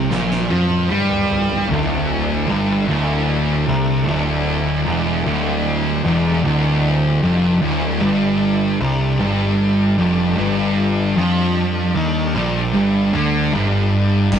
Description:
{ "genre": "stoner and doom metal", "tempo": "76 BPM", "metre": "4/4", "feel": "straight", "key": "D minor", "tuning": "A4 = 445 Hz", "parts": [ { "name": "bright tonewheel organ", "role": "sustained chords", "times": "0.0-14.4 s", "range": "D3 to C5", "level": "-29 LUFS", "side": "left 2 dB", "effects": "slow rotary speaker, overdrive" }, { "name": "crunchy overdriven guitar", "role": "riff", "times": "0.0-14.4 s", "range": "D2 to G3", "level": "-25 LUFS", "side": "left 2 dB", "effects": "none" }, { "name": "thick fuzz guitar", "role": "riff", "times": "0.0-14.4 s", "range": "D2 to G3", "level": "-22 LUFS", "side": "left 6 dB", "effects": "distortion" }, { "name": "thick fuzz guitar", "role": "riff", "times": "0.0-14.4 s", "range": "D2 to G3", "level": "-19 LUFS", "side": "right 6 dB", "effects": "distortion" }, { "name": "fuzz picked electric bass", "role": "bass", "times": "0.0-14.4 s", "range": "D1 to G2", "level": "-22 LUFS", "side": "left 1 dB", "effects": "overdrive" }, { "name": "oversized low-tuned drum kit", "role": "drums", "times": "0.1-1.7, 14.3-14.4 s", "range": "crash cymbal, kick drum, snare drum, toms", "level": "-26 LUFS", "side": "left 1 dB", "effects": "none" } ], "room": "moderate studio reverb, RT60 0.6 s", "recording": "rough rehearsal-room recording, tube saturation, nothing above 10.9 kHz", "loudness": "-15 LUFS", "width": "side -8 dB against mid", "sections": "0.0-1.7 A section; 1.7-14.4 B section", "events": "drum fill 0.1-1.7", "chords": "0.0 Bb5; 1.7 Dm; 8.0 G5" }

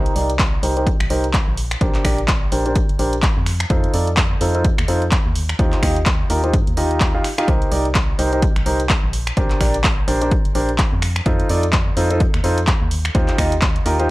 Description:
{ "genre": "piano house", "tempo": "127 BPM", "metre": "4/4", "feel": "swing 58% on 16ths", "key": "C dorian", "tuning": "A4 = 440 Hz", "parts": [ { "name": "clear concert grand piano", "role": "riff", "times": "0.0-14.1 s", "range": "D4 to F5", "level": "-21 LUFS", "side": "equal", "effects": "sidechain pumping, low-pass filter, analog delay" }, { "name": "organ-like FM bass", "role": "bass", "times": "0.0-14.1 s", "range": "G1 to G2", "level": "-22 LUFS", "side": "equal", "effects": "sidechain pumping" }, { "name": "house drum kit", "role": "drums", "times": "0.1-14.1 s", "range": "finger snaps, handclaps, hi-hat", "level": "-24 LUFS", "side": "equal", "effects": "overdrive" }, { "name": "electronic kick drum", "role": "drums", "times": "0.4-13.7 s", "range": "none", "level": "-18 LUFS", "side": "equal", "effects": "overdrive" } ], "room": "digital ambience", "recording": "dry, gritty hardware recording, cassette tape", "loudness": "-15 LUFS", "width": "side -19 dB against mid", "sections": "0.0-14.1 A section", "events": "none", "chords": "0.0 Cm7; 1.6 Bb69; 3.5 F7; 5.4 Eb69; 7.5 Cm7; 9.1 Bb69; 11.0 F7; 12.9 Eb69" }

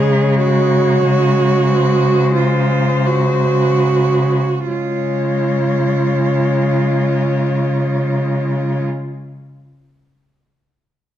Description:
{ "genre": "classical, lyrical piece for cello ensemble", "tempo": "36-52 BPM", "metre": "3/4", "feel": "rubato", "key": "Db major", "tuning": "A4 = 437 Hz", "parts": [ { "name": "rich cello", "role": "melody", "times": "0.0-8.8 s", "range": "C5 to Db5", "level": "-23 LUFS", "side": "left 6 dB", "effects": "none" }, { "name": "rich cello", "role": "second line", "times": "0.0-8.8 s", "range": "F4 to Ab4", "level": "-18 LUFS", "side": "right 5 dB", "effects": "none" }, { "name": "rich cello", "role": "accompaniment", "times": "0.0-8.8 s", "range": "Ab3", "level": "-23 LUFS", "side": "left 5 dB", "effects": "none" }, { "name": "rich cello", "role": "bass", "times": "0.0-8.8 s", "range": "Db3", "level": "-17 LUFS", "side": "equal", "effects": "none" } ], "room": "wet recital hall reverb, RT60 1.4 s", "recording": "dark, warm production", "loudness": "-13 LUFS", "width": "side -11 dB against mid", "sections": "0.0-4.7 A section; 4.7-9.6 B section", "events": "slowing down 0.0-4.7", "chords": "0.4 Ab7/Db" }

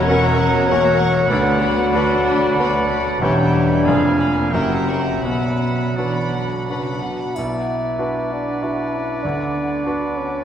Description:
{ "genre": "classical, romantic movement for piano and orchestra", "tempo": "82-100 BPM", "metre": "3/4", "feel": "rubato", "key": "B minor", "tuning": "A4 = 436 Hz", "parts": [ { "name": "bright concert grand piano", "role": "melody", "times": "0.0-10.4 s", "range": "E1 to B4", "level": "-22 LUFS", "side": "equal", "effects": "none" }, { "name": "warm symphonic violin section", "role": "melody", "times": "0.0-7.3 s", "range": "E5 to C#6", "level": "-32 LUFS", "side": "left 2 dB", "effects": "none" }, { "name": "bright clarinet", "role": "second line", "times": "0.0-10.4 s", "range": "B4 to F5", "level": "-28 LUFS", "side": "right 1 dB", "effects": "none" }, { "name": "bright oboe", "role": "second line", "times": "0.0-10.4 s", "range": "D5 to Ab5", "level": "-28 LUFS", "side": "right 1 dB", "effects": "none" }, { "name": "mellow small flute group", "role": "second line", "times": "0.0-10.4 s", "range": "F#5 to B5", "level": "-28 LUFS", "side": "left 1 dB", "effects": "none" }, { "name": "warm symphonic violin section", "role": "second line", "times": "0.0-7.4 s", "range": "F#4 to B5", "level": "-30 LUFS", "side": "left 1 dB", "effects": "none" }, { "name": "mellow bassoon", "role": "accompaniment", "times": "0.0-10.4 s", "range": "E3 to F#4", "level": "-26 LUFS", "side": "right 1 dB", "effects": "none" }, { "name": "warm symphonic viola section", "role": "accompaniment", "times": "0.0-7.0 s", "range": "G3 to D4", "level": "-28 LUFS", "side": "equal", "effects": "none" }, { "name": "mellow French horn section", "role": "sustained chords", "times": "0.0-10.4 s", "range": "A3 to C#5", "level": "-23 LUFS", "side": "left 3 dB", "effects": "none" }, { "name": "rich studio cello section", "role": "bass", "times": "0.0-7.4 s", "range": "D2 to E3", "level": "-26 LUFS", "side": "right 2 dB", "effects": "none" }, { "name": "warm symphonic double bass section", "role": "bass", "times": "0.0-7.1 s", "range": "E1 to D2", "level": "-27 LUFS", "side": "right 4 dB", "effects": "none" }, { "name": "triangle", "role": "percussion", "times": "7.4-8.6 s", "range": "none", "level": "-47 LUFS", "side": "left 2 dB", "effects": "none" } ], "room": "wet concert hall reverb, RT60 2.5 s", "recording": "none", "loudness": "-16 LUFS", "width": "side -9 dB against mid", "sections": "0.0-7.4 A section; 7.4-10.4 A section", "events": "none", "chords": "0.0 F#7/E; 1.3 Bm/D; 3.2 C#m7b5/E; 3.8 Fdim7; 4.5 F#7b9; 5.2 Bm; 9.2 Bm/D" }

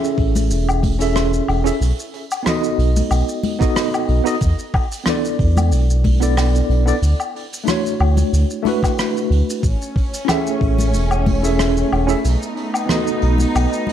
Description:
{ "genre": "sunset chillout", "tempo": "92 BPM", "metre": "4/4", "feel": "swing 53% on 16ths", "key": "A major", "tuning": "A4 = 440 Hz", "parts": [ { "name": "tine electric piano", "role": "accompaniment", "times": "0.0-13.9 s", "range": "A3 to E5", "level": "-20 LUFS", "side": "right 1 dB", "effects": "overdrive, medium stereo tremolo, auto-pan, digital delay" }, { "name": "vintage brush drum kit", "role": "drums", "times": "0.0-13.9 s", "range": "hi-hat, rim click, shaker, woodblock", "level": "-26 LUFS", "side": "left 1 dB", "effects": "none" }, { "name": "round analog bass", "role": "bass", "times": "0.2-13.7 s", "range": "E1 to E2", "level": "-16 LUFS", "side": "equal", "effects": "tube saturation" }, { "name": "electronic kick drum", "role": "drums", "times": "0.2-11.4 s", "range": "none", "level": "-19 LUFS", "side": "equal", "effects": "none" }, { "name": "congas", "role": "percussion", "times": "0.4-13.9 s", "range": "none", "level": "-25 LUFS", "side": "left 3 dB", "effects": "none" }, { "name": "muted symphonic string section", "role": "sustained chords", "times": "9.6-13.9 s", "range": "A3 to D#4", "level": "-24 LUFS", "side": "right 1 dB", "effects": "none" } ], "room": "light reverb, small room ambience", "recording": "dark, warm production", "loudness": "-15 LUFS", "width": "side -10 dB against mid", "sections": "0.0-13.9 A section", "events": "none", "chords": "0.0 Amaj7; 1.8 B7; 4.4 E7sus4; 7.0 Dmaj9; 9.6 Amaj7; 12.2 B7" }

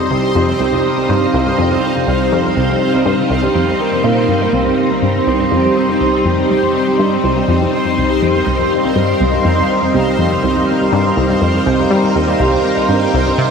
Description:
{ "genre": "ambient, sequencer-driven space music", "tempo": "122 BPM", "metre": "4/4", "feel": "straight", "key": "C minor", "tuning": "A4 = 440 Hz", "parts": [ { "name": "string machine, full ensemble", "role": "sustained chords", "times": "0.0-13.5 s", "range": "G3 to F5", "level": "-15 LUFS", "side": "equal", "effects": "phaser, ensemble chorus" }, { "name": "concert harp", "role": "arpeggios", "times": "0.0-13.5 s", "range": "C3 to C5", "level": "-19 LUFS", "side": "right 1 dB", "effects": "auto-pan, low-pass filter, tape echo" }, { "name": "bubbling stepped-filter texture", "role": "texture", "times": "0.0-13.5 s", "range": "C5 to C6", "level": "-22 LUFS", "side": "equal", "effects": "chorus, built-in reverb" }, { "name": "tight sequenced synth", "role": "riff", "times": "0.1-13.5 s", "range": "C2 to G3", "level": "-17 LUFS", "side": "equal", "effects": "chorus, tape echo" } ], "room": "wet plate reverb, RT60 3.1 s", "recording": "none", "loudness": "-12 LUFS", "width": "side -6 dB against mid", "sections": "0.0-13.5 A section", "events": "filter sweep on harp 0.0-13.5", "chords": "0.0 Cm" }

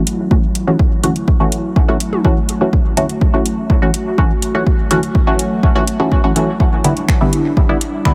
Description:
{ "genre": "dub techno", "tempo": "124 BPM", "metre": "4/4", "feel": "straight", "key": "F# phrygian", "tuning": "A4 = 441 Hz", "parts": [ { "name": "warbly tape-like pad", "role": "sustained chords", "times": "0.0-8.1 s", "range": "F#3 to F#4", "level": "-25 LUFS", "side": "equal", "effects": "chorus, built-in reverb, sidechain pumping" }, { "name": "filtered dub chord stab", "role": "stabs", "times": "0.0-8.1 s", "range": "D3 to F#4", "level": "-20 LUFS", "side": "equal", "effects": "chorus, phaser, sidechain pumping, dub echo" }, { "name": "deep house drum kit", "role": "drums", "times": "0.1-8.1 s", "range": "finger snaps, hi-hat", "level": "-24 LUFS", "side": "equal", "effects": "overdrive" }, { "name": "electronic kick drum", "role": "drums", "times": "0.3-8.1 s", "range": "none", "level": "-17 LUFS", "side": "equal", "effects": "overdrive" }, { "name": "electronic toms and congas", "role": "percussion", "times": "0.7-6.9 s", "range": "none", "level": "-29 LUFS", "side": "equal", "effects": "none" } ], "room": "light reverb", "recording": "none", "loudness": "-15 LUFS", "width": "mono", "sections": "0.0-8.1 A section", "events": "none", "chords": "0.0 F#m7; 6.6 Em7" }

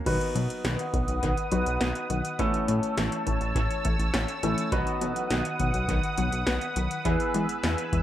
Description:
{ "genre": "synth-pop", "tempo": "103 BPM", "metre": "4/4", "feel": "straight", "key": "B major", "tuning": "A4 = 442 Hz", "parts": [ { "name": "clear baby grand piano", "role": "accompaniment", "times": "0.0-8.0 s", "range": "A3 to B4", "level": "-32 LUFS", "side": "right 1 dB", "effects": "tape echo" }, { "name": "sweeping resonant pad", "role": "sustained chords", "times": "0.1-8.0 s", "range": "B4 to E6", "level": "-31 LUFS", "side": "left 1 dB", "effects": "chorus" }, { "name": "analog pluck", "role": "arpeggios", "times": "0.1-8.0 s", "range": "D#3 to C#4", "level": "-33 LUFS", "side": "left 3 dB", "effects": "chorus, tape echo" }, { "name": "chorused synth bass", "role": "bass", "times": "0.1-8.0 s", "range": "A1 to E3", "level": "-29 LUFS", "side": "equal", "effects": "none" }, { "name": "electro analog drum machine", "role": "drums", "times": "0.1-8.0 s", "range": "crash cymbal, hi-hat, kick drum, snare drum", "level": "-30 LUFS", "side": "equal", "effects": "tape echo" } ], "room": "moderate spring reverb, RT60 1.4 s", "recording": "echo-heavy mix", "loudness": "-24 LUFS", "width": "side -12 dB against mid", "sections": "0.1-8.0 A section", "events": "none", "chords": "0.1 B; 2.4 A; 4.7 B; 7.1 E" }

